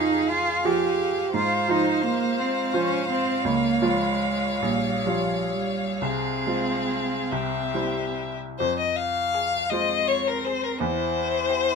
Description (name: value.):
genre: classical, slow romantic movement for piano quartet.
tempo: 41-60 BPM (dotted quarters).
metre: 6/8.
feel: rubato.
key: F minor.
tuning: A4 = 441 Hz.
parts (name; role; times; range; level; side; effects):
clear violin; melody; 0.0-11.8 s; Bb4 to F5; -27 LUFS; left 6 dB; none.
clear cello; second line; 0.0-11.8 s; F3 to G4; -26 LUFS; right 4 dB; none.
rich violin; second line; 0.0-11.7 s; G4 to Db5; -32 LUFS; left 4 dB; none.
bright baby grand piano; accompaniment; 0.0-11.8 s; Bb1 to Db5; -28 LUFS; right 2 dB; none.
room: light reverb.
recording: close, detailed microphones.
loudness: -22 LUFS.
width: side -5 dB against mid.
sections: 0.0-8.6 A section; 8.6-11.8 B section.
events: none.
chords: 0.0 Fm; 1.3 Fm/Ab; 3.5 Db; 4.6 Gm7b5/Bb; 6.0 Fm/C; 7.3 C; 8.6 Fm; 10.8 C/E.